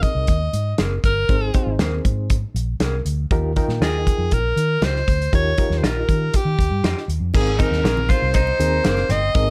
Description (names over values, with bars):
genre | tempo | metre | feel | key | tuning
uptempo 1960s-style soul | 119 BPM | 4/4 | straight | Ab major | A4 = 440 Hz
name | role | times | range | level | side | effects
breathy alto saxophone | melody | 0.0-9.5 s | G4 to Eb5 | -25 LUFS | equal | none
barky reed electric piano | accompaniment | 0.0-9.5 s | Ab2 to G5 | -29 LUFS | equal | overdrive, fast tremolo
vintage muted fingered electric bass | bass | 0.0-9.5 s | Gb1 to Eb3 | -24 LUFS | equal | none
warm soul drum kit | drums | 0.0-9.5 s | crash cymbal, hi-hat, kick drum, snare drum | -23 LUFS | equal | none
electric guitar through a small old amp | stabs | 0.8-9.0 s | C4 to Eb5 | -32 LUFS | equal | none
congas | percussion | 7.3-9.5 s | none | -34 LUFS | equal | none
semi-hollow electric guitar | riff | 7.6-9.3 s | Bb3 to F4 | -30 LUFS | equal | spring reverb
room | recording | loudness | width
light reverb | none | -20 LUFS | mono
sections
0.0-7.3 A section; 7.3-9.5 B section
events
none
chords
0.0 Abadd9; 3.3 Ebadd9; 7.3 Abadd9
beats
0.28 0.79 | 1.29 1.80 2.30 2.81 | 3.31 3.82 4.32 4.83 | 5.33 5.83 6.34 6.84 | 7.34 7.84 8.35 8.85 | 9.35